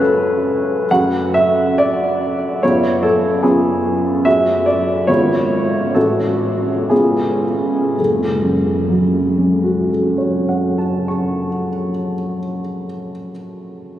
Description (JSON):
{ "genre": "classical, romantic character piece for solo piano", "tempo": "52-74 BPM", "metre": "2/4", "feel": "rubato", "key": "F# minor", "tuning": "A4 = 435 Hz", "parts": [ { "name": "clear grand piano", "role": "solo", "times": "0.0-14.0 s", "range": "F#1 to C#6", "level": "-15 LUFS", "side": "equal", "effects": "none" } ], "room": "wet cathedral reverb, RT60 6.7 s", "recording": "recorded on a phone in the room, studio reverb, compression", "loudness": "-14 LUFS", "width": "side -12 dB against mid", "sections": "0.9-8.0 A section; 8.0-11.8 B section", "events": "slowing down 3.4-8.0", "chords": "0.0 F#m; 2.6 C#7/F#; 4.3 F#m; 5.1 C#7/G#; 6.0 F#m/A; 6.9 C#7; 8.0 F#m" }